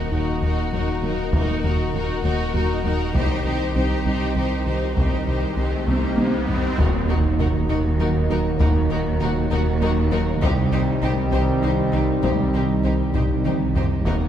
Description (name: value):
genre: cinematic, hybrid orchestral and electronic film score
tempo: 66 BPM (dotted quarters)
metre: 6/8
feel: straight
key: Eb dorian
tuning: A4 = 440 Hz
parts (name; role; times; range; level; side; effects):
- rich studio violin section; melody; 0.0-14.1 s; Bb4 to C5; -31 LUFS; left 5 dB; none
- warm symphonic violin section; second line; 0.0-14.1 s; Gb4 to G4; -31 LUFS; left 4 dB; none
- warm symphonic viola section; accompaniment; 0.0-14.1 s; Eb4; -31 LUFS; equal; none
- hollow soft pad; sustained chords; 0.0-14.3 s; Eb3 to Eb5; -30 LUFS; left 1 dB; chorus
- saturated sub bass; bass; 0.0-14.3 s; Eb1 to C2; -28 LUFS; equal; none
- thumb-piano-like synth pluck; arpeggios; 0.1-14.2 s; C3 to Eb4; -33 LUFS; left 2 dB; none
- rubbery square bass; riff; 0.1-14.2 s; C2 to Eb2; -27 LUFS; left 1 dB; none
- dark symphonic cello section; bass; 0.1-14.3 s; C2 to Eb2; -28 LUFS; right 2 dB; none
- dark symphonic double bass section; bass; 0.1-14.3 s; C2 to Eb2; -28 LUFS; right 2 dB; none
- taiko ensemble; drums; 1.3-14.3 s; none; -25 LUFS; equal; none
- riser and impact; sound effects; 4.9-8.6 s; none; -31 LUFS; equal; none
- bright trombone section; sustained chords; 6.8-14.3 s; Eb3 to G3; -29 LUFS; right 2 dB; none
- mellow French horn section; sustained chords; 6.8-14.3 s; Bb3 to Eb4; -30 LUFS; equal; none
room: wet scoring stage reverb, RT60 2.1 s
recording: heard from further back in the room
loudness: -19 LUFS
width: side -10 dB against mid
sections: 0.0-6.8 A section; 6.8-14.3 A section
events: riser 4.9-6.8; drum fill 5.9-6.8, 13.1-14.1; impact 6.8-8.6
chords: 0.0 Ebm; 3.1 Cm; 6.8 Ebm; 10.4 Cm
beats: 0.42 | 1.33 2.24 | 3.15 4.06 | 4.97 5.88 | 6.79 7.69 | 8.60 9.51 | 10.42 11.33 | 12.24 13.15 | 14.06